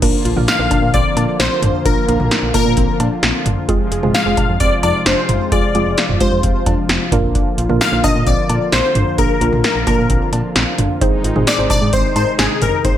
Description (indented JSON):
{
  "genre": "synth-pop",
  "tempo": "131 BPM",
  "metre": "4/4",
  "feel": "straight",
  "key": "Bb mixolydian",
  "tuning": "A4 = 440 Hz",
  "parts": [
    { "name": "soft round pluck", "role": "accompaniment", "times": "0.0-13.0 s", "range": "Ab3 to C5", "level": "-21 LUFS", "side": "right 4 dB", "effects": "chorus" },
    { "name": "brassy analog pad", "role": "sustained chords", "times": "0.0-13.0 s", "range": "C3 to F4", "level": "-23 LUFS", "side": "equal", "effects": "chorus" },
    { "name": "warbly dusty pluck", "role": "arpeggios", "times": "0.0-13.0 s", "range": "C4 to Ab4", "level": "-25 LUFS", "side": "left 4 dB", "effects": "chorus, tape echo" },
    { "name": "solid FM bass", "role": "bass", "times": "0.0-12.9 s", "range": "F1 to Bb2", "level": "-20 LUFS", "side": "equal", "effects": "none" },
    { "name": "electro analog drum machine", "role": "drums", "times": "0.0-13.0 s", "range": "cowbell, crash cymbal, hi-hat, kick drum, snare drum, toms", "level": "-17 LUFS", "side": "equal", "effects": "gated reverb" },
    { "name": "funky polysynth comp", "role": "melody", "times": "0.5-13.0 s", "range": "Ab4 to F5", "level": "-18 LUFS", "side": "left 3 dB", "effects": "chorus" }
  ],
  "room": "light reverb",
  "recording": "none",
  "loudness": "-13 LUFS",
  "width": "side -11 dB against mid",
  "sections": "0.0-13.0 A section",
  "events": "none",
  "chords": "0.0 Bb; 3.7 Fm; 7.1 Bb",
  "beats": "| 0.02 0.48 0.94 1.40 | 1.85 2.31 2.77 3.23 | 3.69 4.14 4.60 5.06 | 5.52 5.98 6.43 6.89 | 7.35 7.81 8.27 8.72 | 9.18 9.64 10.10 10.56 | 11.02 11.47 11.93 12.39 | 12.85"
}